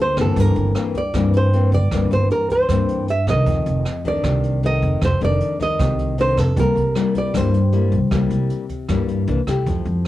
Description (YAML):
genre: bossa nova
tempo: 155 BPM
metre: 4/4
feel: straight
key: unclear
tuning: A4 = 440 Hz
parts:
  - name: nylon-string guitar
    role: melody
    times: 0.0-9.3 s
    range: A4 to E5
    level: -22 LUFS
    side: right 2 dB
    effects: cassette tape
  - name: nylon-string guitar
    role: accompaniment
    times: 0.0-10.1 s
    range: F2 to A4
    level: -22 LUFS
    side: left 5 dB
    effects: cassette tape
  - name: upright bass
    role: bass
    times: 0.0-10.1 s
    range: F1 to G2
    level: -20 LUFS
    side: right 1 dB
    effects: none
  - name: jazz brush drum kit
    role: drums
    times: 0.2-10.1 s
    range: hi-hat, kick drum, rim click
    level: -27 LUFS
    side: right 2 dB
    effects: cassette tape
room: light reverb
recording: home recording on cassette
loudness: -16 LUFS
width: side -14 dB against mid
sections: 0.0-9.7 A section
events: none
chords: 0.4 C7/G; 3.5 F6; 6.6 C7; 9.3 C9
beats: | 0.36 0.75 1.14 1.52 | 1.91 2.30 2.69 3.08 | 3.46 3.85 4.24 4.63 | 5.01 5.40 5.79 6.18 | 6.57 6.95 7.34 7.73 | 8.12 8.51 8.89 9.28 | 9.67 10.06